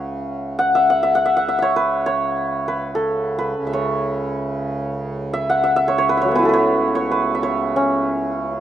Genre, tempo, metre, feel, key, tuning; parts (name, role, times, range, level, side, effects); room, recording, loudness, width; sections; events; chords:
indian classical, Hindustani; free time; C# raga malkauns; A4 = 439 Hz
santur; melody; 0.0-8.6 s; F#3 to F#5; -18 LUFS; equal
hand-pumped harmonium; drone; 0.0-8.6 s; C#2 to C#3; -27 LUFS; right 2 dB
moderate small room ambience, RT60 0.5 s; rough home demo mix; -17 LUFS; side -11 dB against mid
0.0-8.6 A section